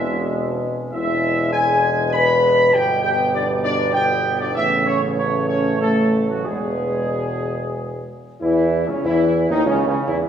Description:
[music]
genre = classical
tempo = 97 BPM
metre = 3/4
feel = straight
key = unclear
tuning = A4 = 442 Hz
[part]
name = dark trumpet section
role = melody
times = 0.0-10.2 s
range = C#4 to B5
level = -21 LUFS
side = equal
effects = none
[part]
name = dark French horn section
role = sustained chords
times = 0.0-10.2 s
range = F#3 to B4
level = -22 LUFS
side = left 3 dB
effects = none
[part]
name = mellow trombone section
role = sustained chords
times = 0.0-10.3 s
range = B2 to B3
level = -25 LUFS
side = right 1 dB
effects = none
[part]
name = warm tuba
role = bass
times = 0.0-10.3 s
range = E1 to E2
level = -23 LUFS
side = right 2 dB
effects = none
[sound]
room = wet scoring stage reverb, RT60 1.8 s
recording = studio ambience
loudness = -17 LUFS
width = side -8 dB against mid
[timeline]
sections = 0.0-8.4 A section; 8.4-10.3 B section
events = none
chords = 0.0 E; 2.7 G; 4.6 A; 6.5 E; 8.4 A (rootless)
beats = 0.32 | 0.92 1.53 2.13 | 2.74 3.35 3.96 | 4.57 5.18 5.81 | 6.46 7.11 7.76 | 8.42 9.05 9.67

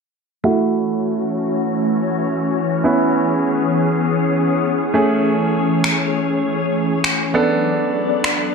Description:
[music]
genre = dance-pop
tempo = 100 BPM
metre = 4/4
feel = straight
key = F# minor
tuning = A4 = 440 Hz
[part]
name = clear baby grand piano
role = accompaniment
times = 0.4-8.5 s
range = A3 to A4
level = -19 LUFS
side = right 3 dB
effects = low-pass filter
[part]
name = glassy FM pad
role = sustained chords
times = 0.7-8.5 s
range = E3 to D5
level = -18 LUFS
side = left 2 dB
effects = ensemble chorus, built-in reverb, low-pass filter
[part]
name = electronic finger snaps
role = drums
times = 5.8-8.4 s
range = none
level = -20 LUFS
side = equal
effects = none
[sound]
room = moderate digital room reverb, RT60 1.1 s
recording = dark, warm production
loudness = -16 LUFS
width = side -5 dB against mid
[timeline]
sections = 0.4-8.5 A section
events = filter sweep 0.4-8.5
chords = 0.4 F#m7; 2.8 C#m7; 4.9 Amaj7; 7.3 Bm7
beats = | 0.44 1.04 1.64 2.24 | 2.84 3.44 4.04 4.64 | 5.24 5.84 6.44 7.04 | 7.64 8.24

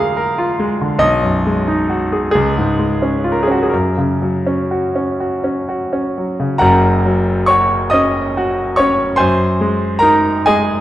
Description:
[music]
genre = classical, romantic nocturne for solo piano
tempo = 41-49 BPM (dotted quarters)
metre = 12/8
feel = rubato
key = F# major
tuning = A4 = 440 Hz
[part]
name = bright grand piano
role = solo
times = 0.0-10.8 s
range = F#1 to D#6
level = -13 LUFS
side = equal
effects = none
[sound]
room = moderate recital hall reverb, RT60 1.8 s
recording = dark, warm production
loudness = -13 LUFS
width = side -14 dB against mid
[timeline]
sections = 0.0-6.6 A section; 6.6-10.8 B section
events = none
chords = 0.0 Bb7/D; 1.0 G#m7/B; 2.3 C#; 3.7 F#; 9.2 G#7/F#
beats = | 1.01 2.32 3.71 5.18 | 6.63 7.94 9.21 10.49

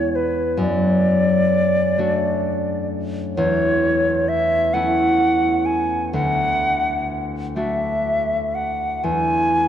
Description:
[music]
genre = celtic folk, Celtic slow air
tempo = 43 BPM (dotted quarters)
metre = 6/8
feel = rubato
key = unclear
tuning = A4 = 440 Hz
[part]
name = wooden flute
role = melody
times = 0.0-9.7 s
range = B4 to G#5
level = -20 LUFS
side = equal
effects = none
[part]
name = concert harp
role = accompaniment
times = 0.0-9.7 s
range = D2 to F#4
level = -21 LUFS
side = left 1 dB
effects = none
[sound]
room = wet church reverb, RT60 3.2 s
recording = dark, warm production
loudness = -17 LUFS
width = side -10 dB against mid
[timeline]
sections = 0.0-9.7 A section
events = none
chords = 0.0 E; 0.6 D/F#; 3.4 A/E; 6.1 D; 9.0 E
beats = | 0.59 1.98 | 3.37 4.74 | 6.14 7.57 | 9.04

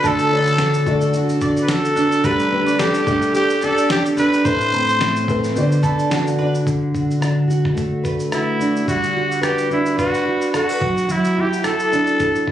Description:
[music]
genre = acoustic pop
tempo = 108 BPM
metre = 4/4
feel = swing 55% on 16ths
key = D mixolydian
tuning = A4 = 438 Hz
[part]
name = growling trumpet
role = melody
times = 0.0-12.5 s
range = E4 to C5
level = -20 LUFS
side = equal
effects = plate reverb, ping-pong delay
[part]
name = felt-muted upright piano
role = accompaniment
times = 0.0-6.7 s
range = A3 to B5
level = -25 LUFS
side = left 4 dB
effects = plate reverb
[part]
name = fingerpicked plugged-in steel-string acoustic guitar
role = accompaniment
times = 0.0-12.5 s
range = A2 to B4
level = -18 LUFS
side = right 1 dB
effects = double-tracked left and right
[part]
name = mandolin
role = arpeggios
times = 0.0-6.5 s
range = A4 to D5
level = -27 LUFS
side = right 4 dB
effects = plate reverb
[part]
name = dusty soul sampler-style drum kit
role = drums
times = 0.0-12.5 s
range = kick drum, rim click, shaker, snare drum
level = -26 LUFS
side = equal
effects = none
[sound]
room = moderate studio reverb, RT60 0.5 s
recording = recorded on a phone in the room, studio reverb, compression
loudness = -16 LUFS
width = side -11 dB against mid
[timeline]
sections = 0.0-6.7 A section; 6.7-8.9 B section; 8.9-12.5 C section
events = felt piano fill 5.6-6.7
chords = 0.0 D; 2.2 Gadd9; 4.5 Amadd9; 5.6 D6; 8.9 Gmaj7; 10.8 Dadd9/F#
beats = | 0.04 0.59 1.14 1.69 | 2.24 2.79 3.35 3.90 | 4.45 5.00 5.55 6.11 | 6.66 7.22 7.77 8.32 | 8.88 9.43 9.99 10.54 | 11.10 11.65 12.21

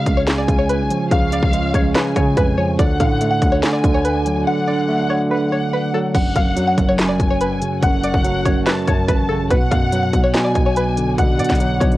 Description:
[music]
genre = hip hop, trap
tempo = 143 BPM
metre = 4/4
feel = half-time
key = F# harmonic minor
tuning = A4 = 440 Hz
[part]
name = string-like resonator pluck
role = melody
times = 0.0-12.0 s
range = A4 to F#5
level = -23 LUFS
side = left 1 dB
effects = chorus, phaser, low-pass filter, cassette tape, tape echo
[part]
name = dark symphonic violin section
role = second line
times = 0.0-12.0 s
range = E#5 to A5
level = -25 LUFS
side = left 1 dB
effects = cassette tape, tape echo
[part]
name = tine electric piano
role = accompaniment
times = 0.0-12.0 s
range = F#2 to A3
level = -19 LUFS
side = right 1 dB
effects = medium stereo tremolo, low-pass filter, cassette tape
[part]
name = glassy FM pad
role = sustained chords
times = 0.0-12.0 s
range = G#3 to D5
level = -30 LUFS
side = left 1 dB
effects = none
[part]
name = hard-hitting 808-style bass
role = bass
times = 0.0-12.0 s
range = E#1 to C#3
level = -24 LUFS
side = equal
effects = none
[part]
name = trap drum kit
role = drums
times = 0.1-12.0 s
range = crash cymbal, handclaps, hi-hat, kick drum, snare drum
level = -18 LUFS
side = equal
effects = cassette tape
[sound]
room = little or no reverb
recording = home recording on cassette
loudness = -15 LUFS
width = side -16 dB against mid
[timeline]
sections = 0.0-6.1 A section; 6.1-12.0 A section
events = break 4.5-6.1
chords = 0.0 C#; 2.8 D; 6.1 F#m; 9.5 Bm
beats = 0.27 0.69 | 1.11 1.53 1.95 2.37 | 2.79 3.21 3.63 4.05 | 4.47 4.89 5.31 5.73 | 6.15 6.57 6.99 7.41 | 7.83 8.24 8.66 9.08 | 9.50 9.92 10.34 10.76 | 11.18 11.60

